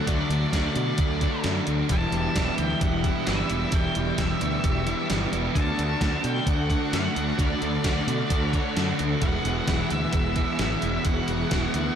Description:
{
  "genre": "rock, shoegaze and dream pop",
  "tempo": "131 BPM",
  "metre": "4/4",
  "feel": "straight",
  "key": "unclear",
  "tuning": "A4 = 444 Hz",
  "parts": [
    { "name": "octave-fuzz lead guitar", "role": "melody", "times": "0.0-12.0 s", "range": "D5 to A5", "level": "-32 LUFS", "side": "equal", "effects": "distortion, diffuse ambient delay" },
    { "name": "ensemble organ-string", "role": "sustained chords", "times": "0.0-12.0 s", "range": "F#4 to C#6", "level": "-35 LUFS", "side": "equal", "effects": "ensemble chorus" },
    { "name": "electric guitar through a small old amp", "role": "arpeggios", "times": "0.0-12.0 s", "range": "E3 to A4", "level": "-37 LUFS", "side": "right 1 dB", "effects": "none" },
    { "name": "crunchy overdriven guitar", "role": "riff", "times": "0.0-12.0 s", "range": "D3 to F#4", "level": "-30 LUFS", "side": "right 7 dB", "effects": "reverse reverb" },
    { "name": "thick fuzz guitar", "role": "riff", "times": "0.0-12.0 s", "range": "E2 to D4", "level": "-29 LUFS", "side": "left 8 dB", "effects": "distortion, analog chorus" },
    { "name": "growling fingered electric bass", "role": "bass", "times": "0.1-11.9 s", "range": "E1 to B2", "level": "-29 LUFS", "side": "equal", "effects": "overdrive" },
    { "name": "gated 80s digital drum machine", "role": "drums", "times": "0.1-11.8 s", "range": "hi-hat, kick drum, snare drum", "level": "-28 LUFS", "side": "equal", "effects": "gated reverb, gated reverb snare" }
  ],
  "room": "moderate lush hall reverb, RT60 1.9 s",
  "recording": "dreamy mix soaked in reverb",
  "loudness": "-22 LUFS",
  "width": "side -8 dB against mid",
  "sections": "0.0-12.0 A section",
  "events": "kick and snare drop out 5.3",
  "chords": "0.0 D; 1.9 Em7; 5.6 Dmaj7; 9.2 Eadd9"
}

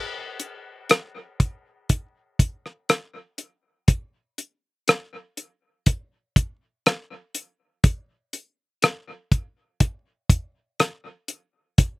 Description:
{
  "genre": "pop",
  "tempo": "61 BPM",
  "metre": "4/4",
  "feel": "straight",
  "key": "none",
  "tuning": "none",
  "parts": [
    { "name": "damped 70s drum kit", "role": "drums", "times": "0.4-12.0 s", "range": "hi-hat, kick drum, rim click", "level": "-18 LUFS", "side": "equal", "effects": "none" }
  ],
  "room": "little or no reverb",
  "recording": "recorded outdoors, with no room sound",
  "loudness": "-22 LUFS",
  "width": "side -22 dB against mid",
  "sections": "0.0-12.0 A section",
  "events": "none",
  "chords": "none"
}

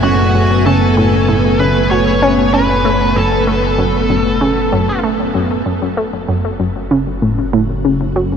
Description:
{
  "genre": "ambient, sequencer-driven space music",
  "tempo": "96 BPM",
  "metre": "4/4",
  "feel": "straight",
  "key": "F# minor",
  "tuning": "A4 = 440 Hz",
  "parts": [
    { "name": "smooth overdriven lead guitar", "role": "melody", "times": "0.0-5.0 s", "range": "F#4 to C#5", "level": "-18 LUFS", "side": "equal", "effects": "shimmer reverb, ping-pong delay" },
    { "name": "string machine, full ensemble", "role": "sustained chords", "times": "0.0-8.4 s", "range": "A3 to G#5", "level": "-17 LUFS", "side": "right 1 dB", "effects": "ensemble chorus, shimmer reverb" },
    { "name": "analog pluck", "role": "riff", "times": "0.0-8.4 s", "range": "F#2 to C#4", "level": "-16 LUFS", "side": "equal", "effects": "chorus, shimmer reverb, ping-pong delay" },
    { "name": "fat analog bass", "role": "bass", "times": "0.0-8.4 s", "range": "F#1", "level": "-18 LUFS", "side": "equal", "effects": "none" }
  ],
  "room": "wet huge ambient reverb, RT60 7.2 s",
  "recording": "none",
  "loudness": "-12 LUFS",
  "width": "side -7 dB against mid",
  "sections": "0.0-5.7 A section; 5.7-8.4 B section",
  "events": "none",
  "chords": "0.0 F#m"
}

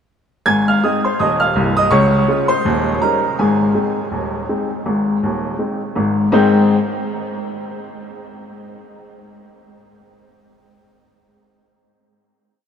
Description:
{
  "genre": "ragtime piano",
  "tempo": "82 BPM",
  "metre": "2/4",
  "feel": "swing 55% on 16ths",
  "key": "Ab major",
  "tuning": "A4 = 440 Hz",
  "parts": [
    { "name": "bright upright piano", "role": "solo", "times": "0.5-6.8 s", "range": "C1 to Ab6", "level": "-15 LUFS", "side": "equal", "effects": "none" }
  ],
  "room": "wet huge ambient reverb, RT60 6.5 s",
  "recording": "heard from further back in the room",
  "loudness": "-14 LUFS",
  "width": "side -7 dB against mid",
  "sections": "0.5-6.3 A section; 6.3-7.8 final chord",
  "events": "none",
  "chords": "0.5 Ab; 1.9 Db; 2.7 Eb7; 3.4 Ab"
}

